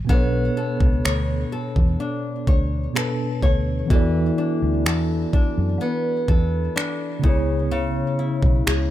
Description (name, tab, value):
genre	contemporary R&B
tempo	63 BPM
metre	4/4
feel	straight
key	B dorian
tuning	A4 = 436 Hz
part	mellow tine electric piano	accompaniment	0.0-8.9 s	B2 to D5	-25 LUFS	right 1 dB	medium stereo tremolo
part	nylon-string guitar	arpeggios	0.1-8.9 s	C#3 to C#5	-26 LUFS	left 2 dB	digital delay
part	vintage muted fingered electric bass	bass	0.1-8.9 s	B1 to F#2	-23 LUFS	equal	none
part	smooth R&B drum kit	drums	0.1-8.9 s	finger snaps, kick drum	-20 LUFS	equal	none
room	little or no reverb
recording	none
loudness	-19 LUFS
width	side -13 dB against mid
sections	0.0-8.9 A section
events	none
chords	0.1 Bm9; 3.9 E7sus4; 7.2 C#m7